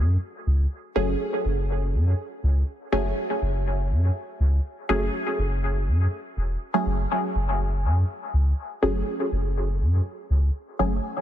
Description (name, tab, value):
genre	dub techno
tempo	122 BPM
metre	4/4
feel	straight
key	F# minor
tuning	A4 = 440 Hz
part	filtered dub chord stab	stabs	0.0-11.0 s	F#3 to G#4	-27 LUFS	equal	chorus, phaser, dub echo
part	soft dub sub bass	bass	0.0-11.0 s	E1 to F#2	-22 LUFS	equal	none
room	light reverb, digital ambience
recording	dense, heavily limited modern master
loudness	-22 LUFS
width	side -11 dB against mid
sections	0.0-7.1 A section; 7.1-11.2 A section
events	none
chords	0.0 F#madd9